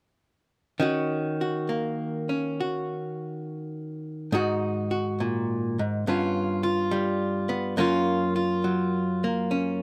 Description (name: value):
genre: solo jazz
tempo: 69 BPM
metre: 4/4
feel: swing 66% on 8ths, rubato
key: Eb minor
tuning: A4 = 440 Hz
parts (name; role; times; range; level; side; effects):
- archtop guitar, miked and amplified; solo; 0.8-9.8 s; Gb2 to Gb4; -27 LUFS; equal; none
room: little or no reverb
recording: close, detailed microphones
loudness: -27 LUFS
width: mono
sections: 0.8-9.8 A section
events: none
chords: 0.8 Ebm7; 4.3 Ab5; 6.1 G7#11; 7.8 Gbmaj7